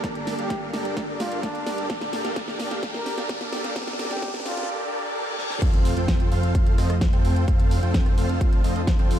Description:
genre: EDM, festival progressive house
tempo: 129 BPM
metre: 4/4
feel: straight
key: unclear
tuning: A4 = 440 Hz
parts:
  - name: muted studio string section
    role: sustained chords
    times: 0.0-9.2 s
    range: G3 to A5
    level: -35 LUFS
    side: left 1 dB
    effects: sidechain pumping
  - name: dense compressed supersaw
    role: riff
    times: 0.0-9.2 s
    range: C4 to G5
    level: -29 LUFS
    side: right 1 dB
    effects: sidechain pumping, ping-pong delay
  - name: wide detuned saw bass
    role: bass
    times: 0.0-9.2 s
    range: G1 to G2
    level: -25 LUFS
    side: equal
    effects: chorus, sidechain pumping
  - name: electronic kick drum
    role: drums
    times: 0.0-9.0 s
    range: none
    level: -22 LUFS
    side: equal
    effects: none
  - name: pop drum kit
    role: drums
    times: 0.0-9.2 s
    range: crash cymbal, hi-hat, rim click, snare drum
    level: -32 LUFS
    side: equal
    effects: none
  - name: riser, reverse cymbal and impact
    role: sound effects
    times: 0.0-7.5 s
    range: none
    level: -36 LUFS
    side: left 1 dB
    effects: none
  - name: trumpet with bucket mute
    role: melody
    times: 0.4-4.7 s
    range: D4 to Bb4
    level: -34 LUFS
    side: left 1 dB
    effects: ping-pong delay
room: light reverb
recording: dark, warm production, high-pass filter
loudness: -21 LUFS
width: side -11 dB against mid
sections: 0.0-5.6 A section; 5.6-9.2 B section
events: build-up 0.0-5.6; drum fill 0.0-4.7, 5.4; riser 0.0-4.7; filter sweep 0.0-5.6; reverse cymbal 4.7-5.6; drop 5.6-9.2; impact 5.6-7.5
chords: 0.0 Gmadd9; 1.9 Bb6; 5.6 F

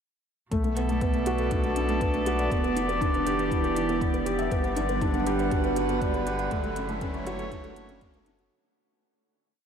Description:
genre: piano and strings electronica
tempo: 120 BPM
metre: 4/4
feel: straight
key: B minor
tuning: A4 = 440 Hz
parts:
  - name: dark string quartet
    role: sustained chords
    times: 0.5-8.5 s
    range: B2 to F#5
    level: -31 LUFS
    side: equal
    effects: sidechain pumping
  - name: felt-muted upright piano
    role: riff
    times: 0.5-8.5 s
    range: A3 to F#5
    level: -27 LUFS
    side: right 1 dB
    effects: wide subtle chorus, analog delay
  - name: warm sub bass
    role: bass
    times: 0.5-8.5 s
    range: E1 to B1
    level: -34 LUFS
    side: left 1 dB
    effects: tube saturation, sidechain pumping
  - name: electronic hi-hat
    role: drums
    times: 0.5-8.5 s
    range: none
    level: -45 LUFS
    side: right 4 dB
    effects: none
  - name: electronic kick drum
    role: drums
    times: 0.5-8.1 s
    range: none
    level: -29 LUFS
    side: left 1 dB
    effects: none
  - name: riser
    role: sound effects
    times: 4.2-8.5 s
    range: none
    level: -44 LUFS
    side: right 2 dB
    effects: none
room: wet huge ambient reverb, RT60 7.5 s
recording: dreamy mix soaked in reverb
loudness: -24 LUFS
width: side -7 dB against mid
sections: 0.5-8.5 build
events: build-up 0.5-8.5; fade-out 5.8-8.5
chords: 0.5 Bm7; 2.5 Em7; 4.5 Gmaj7; 6.5 Dmaj7/F#

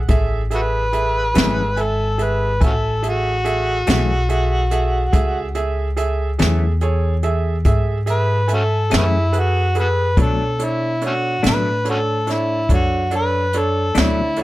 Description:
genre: slow blues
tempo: 48 BPM (dotted quarters)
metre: 12/8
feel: straight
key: F# minor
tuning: A4 = 436 Hz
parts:
  - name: bright upright piano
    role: accompaniment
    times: 0.0-14.4 s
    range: D4 to G#5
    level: -24 LUFS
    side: right 4 dB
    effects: none
  - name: upright bass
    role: bass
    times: 0.0-14.4 s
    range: G#1 to B2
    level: -20 LUFS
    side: equal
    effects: none
  - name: jazz brush drum kit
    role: drums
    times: 0.1-14.4 s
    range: hi-hat, kick drum, snare drum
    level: -20 LUFS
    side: equal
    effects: none
  - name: overdriven harmonica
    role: melody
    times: 0.5-14.4 s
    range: A3 to B4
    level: -20 LUFS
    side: equal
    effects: none
  - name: clean electric guitar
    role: accompaniment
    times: 1.4-14.2 s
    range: F#2 to D4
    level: -22 LUFS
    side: left 5 dB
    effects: harmonic tremolo
room: light reverb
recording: none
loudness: -16 LUFS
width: side -16 dB against mid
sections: 0.0-14.4 A section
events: none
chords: 0.0 F#m7; 10.2 Bm7

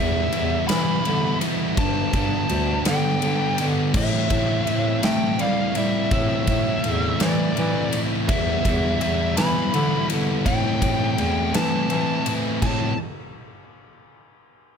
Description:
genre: quiet-loud alternative rock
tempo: 55 BPM (dotted quarters)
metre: 6/8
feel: straight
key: A minor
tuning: A4 = 442 Hz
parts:
  - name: fuzz lead guitar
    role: melody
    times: 0.0-13.0 s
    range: D5 to B5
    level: -27 LUFS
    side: equal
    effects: distortion
  - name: sludgy distorted guitar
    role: riff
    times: 0.0-12.9 s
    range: G2 to E4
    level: -23 LUFS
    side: equal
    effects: overdrive
  - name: breathy bass clarinet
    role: bass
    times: 0.0-13.0 s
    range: D2 to A3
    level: -25 LUFS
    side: equal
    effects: none
  - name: big rock drum kit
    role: drums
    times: 0.3-12.8 s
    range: crash cymbal, kick drum, ride cymbal, snare drum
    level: -26 LUFS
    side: equal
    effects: none
room: light reverb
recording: none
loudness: -19 LUFS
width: side -6 dB against mid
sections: 0.0-12.6 A section; 12.6-14.8 B section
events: none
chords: 0.0 Em; 1.8 G; 3.9 Am; 8.3 Em; 10.5 Am

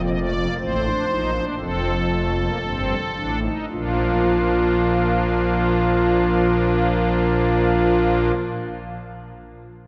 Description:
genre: classical, baroque-style 3-part fugue for pipe organ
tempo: 54-64 BPM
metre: 4/4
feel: straight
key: Bb major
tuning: A4 = 440 Hz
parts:
  - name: pipe organ, strings celeste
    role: solo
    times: 0.0-8.3 s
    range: F1 to Eb5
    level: -21 LUFS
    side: equal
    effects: none
room: wet church reverb, RT60 3.9 s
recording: none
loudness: -21 LUFS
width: mono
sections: 0.0-3.7 A section; 3.7-8.1 B section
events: slowing down 0.0-3.7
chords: 0.0 F7sus4; 1.6 F; 3.7 Bb

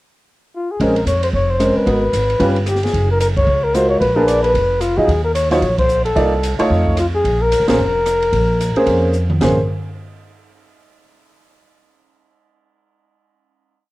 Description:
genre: jazz, small-group swing and bop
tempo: 223 BPM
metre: 4/4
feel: swing 60% on 8ths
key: Bb minor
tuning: A4 = 440 Hz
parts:
  - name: trumpet with bucket mute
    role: melody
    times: 0.6-9.1 s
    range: F4 to D5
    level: -17 LUFS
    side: left 1 dB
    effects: cassette tape
  - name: warm baby grand piano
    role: accompaniment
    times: 0.8-9.6 s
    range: Gb3 to Eb5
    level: -17 LUFS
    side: right 1 dB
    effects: cassette tape
  - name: upright bass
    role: bass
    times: 0.8-9.6 s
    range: F1 to Bb2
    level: -19 LUFS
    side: equal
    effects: none
  - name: open jazz drum kit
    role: drums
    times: 0.8-9.5 s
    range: hi-hat, kick drum, ride cymbal, rim click, snare drum, splash cymbal, toms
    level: -24 LUFS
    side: right 1 dB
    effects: none
room: light reverb, studio reverb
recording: home recording on cassette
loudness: -13 LUFS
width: side -18 dB against mid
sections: 0.0-0.8 pickup bar; 0.8-9.4 A section; 9.4-10.5 final chord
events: band accent 3.3, 5.8, 7.6; drum fill 9.1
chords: 0.0 N.C.; 0.8 Bbm9; 1.9 Abm9; 2.4 G7#11; 2.9 Gbmaj9; 4.0 Bb7b9; 5.1 Eb7(no3); 6.2 Cm11; 6.7 Faug7; 7.2 Bbm9

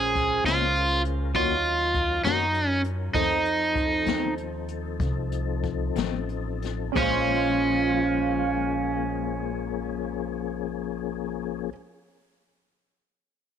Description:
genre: slow blues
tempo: 59-67 BPM (dotted quarters)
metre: 12/8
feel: straight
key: Bb minor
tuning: A4 = 440 Hz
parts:
  - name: crunchy overdriven guitar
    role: melody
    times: 0.0-11.7 s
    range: Db4 to Ab4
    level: -24 LUFS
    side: right 1 dB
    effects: none
  - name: warm baby grand piano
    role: accompaniment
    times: 0.0-11.7 s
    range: Db4 to Db5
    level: -35 LUFS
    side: right 14 dB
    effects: none
  - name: tonewheel organ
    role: sustained chords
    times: 0.0-11.7 s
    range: F3 to Cb5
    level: -34 LUFS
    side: left 14 dB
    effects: slow rotary speaker, overdrive, chorus vibrato
  - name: upright bass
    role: bass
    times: 0.0-11.7 s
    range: A1 to Gb2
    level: -32 LUFS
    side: equal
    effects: none
  - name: jazz brush drum kit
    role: drums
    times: 0.2-7.1 s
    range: crash cymbal, hi-hat, kick drum, snare drum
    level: -32 LUFS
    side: left 3 dB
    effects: none
  - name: clean electric guitar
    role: accompaniment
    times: 0.4-11.8 s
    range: F2 to Gb4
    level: -34 LUFS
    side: left 15 dB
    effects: harmonic tremolo
  - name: electric guitar through a small old amp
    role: second line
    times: 7.0-11.7 s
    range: F4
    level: -32 LUFS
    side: right 14 dB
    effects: ensemble chorus, slapback echo
room: light reverb, small room ambience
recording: 1960s-style stereo with parts hard left and right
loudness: -23 LUFS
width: side -8 dB against mid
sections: 0.0-7.0 A section; 7.0-11.0 B section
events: slowing down 1.9-7.0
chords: 0.0 Bbm7; 1.3 Ebm7; 3.1 F7; 7.0 Bbm7

